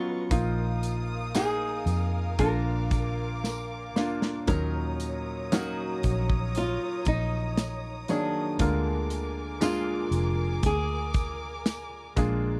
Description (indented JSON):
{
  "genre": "pop ballad",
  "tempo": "58 BPM",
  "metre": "4/4",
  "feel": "straight",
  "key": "unclear",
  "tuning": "A4 = 441 Hz",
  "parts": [
    { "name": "flamenco guitar", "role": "melody", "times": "0.0-12.1 s", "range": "D4 to Bb4", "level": "-35 LUFS", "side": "equal", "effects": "tape echo" },
    { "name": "clear baby grand piano", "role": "accompaniment", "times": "0.0-12.6 s", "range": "Bb2 to Db5", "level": "-35 LUFS", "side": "equal", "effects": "none" },
    { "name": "muted studio string section", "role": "sustained chords", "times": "0.0-12.6 s", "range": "Bb4 to Eb6", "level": "-41 LUFS", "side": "equal", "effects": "none" },
    { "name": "vintage muted fingered electric bass", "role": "bass", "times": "0.3-12.6 s", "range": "F1 to F2", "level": "-32 LUFS", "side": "equal", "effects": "none" },
    { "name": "modern studio drum kit", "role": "drums", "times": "0.3-12.4 s", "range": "hi-hat, kick drum, snare drum", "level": "-31 LUFS", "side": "equal", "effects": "none" },
    { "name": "tambourine", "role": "percussion", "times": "0.3-12.4 s", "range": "none", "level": "-48 LUFS", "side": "equal", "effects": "none" }
  ],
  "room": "little or no reverb",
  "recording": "dry, close 1970s-style studio recording",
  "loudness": "-28 LUFS",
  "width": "mono",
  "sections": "0.0-12.6 A section",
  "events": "drum fill 3.4-4.5",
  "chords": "0.3 Bbsus4; 2.4 Bb; 4.5 Ebm7; 8.6 Bb7"
}